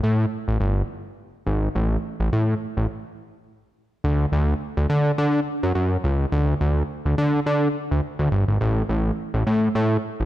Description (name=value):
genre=funk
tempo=105 BPM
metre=4/4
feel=swing 56% on 16ths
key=unclear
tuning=A4 = 440 Hz
part: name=fat analog bass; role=solo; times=0.0-10.3 s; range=G1 to D3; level=-20 LUFS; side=equal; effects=none
room=moderate scoring stage reverb, RT60 1.8 s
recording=none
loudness=-20 LUFS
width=side -14 dB against mid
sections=0.0-4.0 A section; 4.0-10.3 B section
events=break 2.9-4.0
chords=none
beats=0.04 0.61 1.18 | 1.75 2.33 2.90 3.47 | 4.04 4.61 5.18 5.75 | 6.33 6.90 7.47 8.04 | 8.61 9.18 9.75